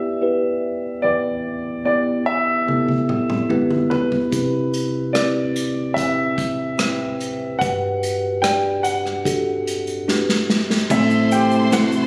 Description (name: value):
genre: pop ballad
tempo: 73 BPM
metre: 4/4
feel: straight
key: E minor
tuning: A4 = 441 Hz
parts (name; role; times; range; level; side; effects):
- clear baby grand piano; melody; 0.0-12.1 s; E4 to G5; -26 LUFS; equal; digital delay
- tine electric piano; accompaniment; 0.0-12.1 s; C2 to D5; -23 LUFS; equal; phaser
- unplugged drum kit; drums; 2.7-11.9 s; crash cymbal, hi-hat, kick drum, rim click, snare drum, toms; -26 LUFS; equal; none
- warm studio violin section; second line; 10.9-12.1 s; C5 to C6; -28 LUFS; equal; digital delay
- warm studio string section; sustained chords; 10.9-12.1 s; C3 to A4; -30 LUFS; equal; none
- woody fretless electric bass; bass; 10.9-12.1 s; A1; -30 LUFS; equal; none
- tube shaker; percussion; 10.9-12.1 s; none; -40 LUFS; equal; none
room: moderate plate reverb, RT60 2.2 s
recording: recorded on a phone in the room, studio reverb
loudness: -20 LUFS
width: mono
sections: 0.0-10.9 A section; 10.9-12.1 B section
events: drum fill 2.7-4.3, 10.1-10.9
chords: 0.0 Em; 4.3 Cmaj7; 7.6 Gmaj7; 10.9 Am